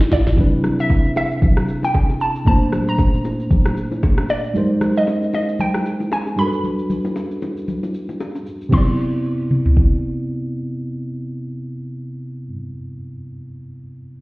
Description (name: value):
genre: amapiano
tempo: 115 BPM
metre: 4/4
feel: swing 58% on 16ths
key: C lydian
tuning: A4 = 440 Hz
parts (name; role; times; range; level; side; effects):
- tine electric piano; accompaniment; 0.0-14.2 s; Bb2 to D5; -22 LUFS; right 1 dB; none
- afro-pop drum kit; drums; 0.0-9.9 s; crash cymbal, hi-hat, kick drum, rim click, shaker, snare drum, toms; -16 LUFS; equal; none
- hollow square pluck; melody; 0.1-12.5 s; D5 to C6; -23 LUFS; equal; chorus, ping-pong delay
- congas and bongos; percussion; 0.4-9.0 s; none; -26 LUFS; left 2 dB; none
room: light reverb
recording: heard muffled through a wall, stone room reverb, EQ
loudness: -16 LUFS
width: side -21 dB against mid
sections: 0.4-8.7 A section; 8.7-12.9 B section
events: drum fill 0.0-0.4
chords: 0.4 Cmaj9; 2.5 Bbmaj9; 4.5 Abmaj9; 6.4 Gmaj9; 8.7 Cmaj9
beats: | 0.38 0.90 1.42 1.94 | 2.46 2.98 3.51 4.03 | 4.55 5.07 5.59 6.12 | 6.64 7.16 7.68 8.20 | 8.72 9.25 9.77 10.29 | 10.81 11.33 11.85 12.38